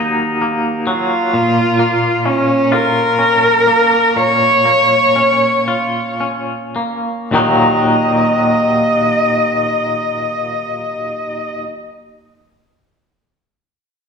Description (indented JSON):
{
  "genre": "post-rock",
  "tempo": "35-44 BPM (dotted quarters)",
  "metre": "6/8",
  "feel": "straight",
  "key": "Eb minor",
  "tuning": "A4 = 439 Hz",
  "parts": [
    { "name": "twangy electric guitar", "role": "arpeggios", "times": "0.0-11.7 s", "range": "Eb2 to F4", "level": "-17 LUFS", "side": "equal", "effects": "tremolo" },
    { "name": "rich cello", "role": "melody", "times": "0.9-11.5 s", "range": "Db4 to Eb5", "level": "-14 LUFS", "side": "equal", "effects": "none" }
  ],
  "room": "wet recital hall reverb, RT60 1.4 s",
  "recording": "recorded in a church or concert hall",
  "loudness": "-12 LUFS",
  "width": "side -5 dB against mid",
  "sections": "0.0-7.3 A section; 7.3-10.8 B section",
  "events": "slowing down 1.3-7.3",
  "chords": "0.0 Ebm; 1.3 Bbm; 7.3 Ebm"
}